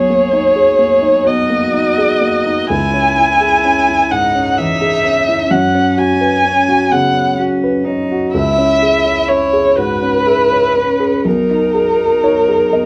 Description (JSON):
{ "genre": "neoclassical piano and strings", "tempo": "42 BPM (dotted quarters)", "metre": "6/8", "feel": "rubato", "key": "C# dorian", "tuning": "A4 = 440 Hz", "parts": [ { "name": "dark violin", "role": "melody", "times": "0.0-12.9 s", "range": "A#4 to G#5", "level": "-15 LUFS", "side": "equal", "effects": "none" }, { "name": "rich cello", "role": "second line", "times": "0.0-12.9 s", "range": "B3 to G#4", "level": "-24 LUFS", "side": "equal", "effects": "none" }, { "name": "warm grand piano", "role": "accompaniment", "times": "0.0-12.9 s", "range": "B1 to D#5", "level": "-19 LUFS", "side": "equal", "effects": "none" } ], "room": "moderate large studio reverb, RT60 0.9 s", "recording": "band playing live in one room", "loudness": "-13 LUFS", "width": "mono", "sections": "0.0-12.9 A section", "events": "none", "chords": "0.0 G#madd9/B; 2.7 C#m; 5.5 F#sus4; 8.3 C#m; 11.2 G#madd9/B", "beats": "1.26 | 2.70 4.11 | 5.50 6.92 | 8.33 9.77 | 11.25 12.74" }